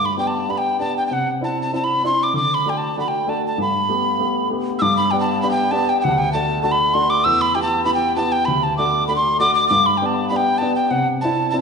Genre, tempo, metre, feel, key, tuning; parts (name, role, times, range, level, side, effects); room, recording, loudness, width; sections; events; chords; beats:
celtic folk, Celtic reel; 196 BPM; 4/4; swing 54% on 8ths; G major; A4 = 444 Hz
mellow hollow tin whistle; melody; 0.0-11.6 s; F#5 to E6; -18 LUFS; equal
warm baby grand piano; accompaniment; 0.0-11.6 s; D2 to G4; -22 LUFS; left 1 dB
wet recital hall reverb, RT60 1.8 s; recorded in a church or concert hall, nothing above 10.4 kHz; -16 LUFS; side -5 dB against mid
0.0-4.8 A section; 4.8-11.6 A section
0.0 G; 1.1 Cadd9; 2.4 D; 3.6 Gadd9; 4.8 G; 6.0 D; 7.3 Em; 8.5 D; 9.7 G; 10.9 Cadd9
0.19 0.50 0.81 | 1.12 1.43 1.74 2.04 | 2.35 2.66 2.97 3.27 | 3.58 3.89 4.20 4.50 | 4.81 5.12 5.42 5.73 | 6.04 6.34 6.65 6.95 | 7.26 7.56 7.87 8.18 | 8.48 8.79 9.09 9.40 | 9.70 10.01 10.31 10.62 | 10.93 11.23 11.54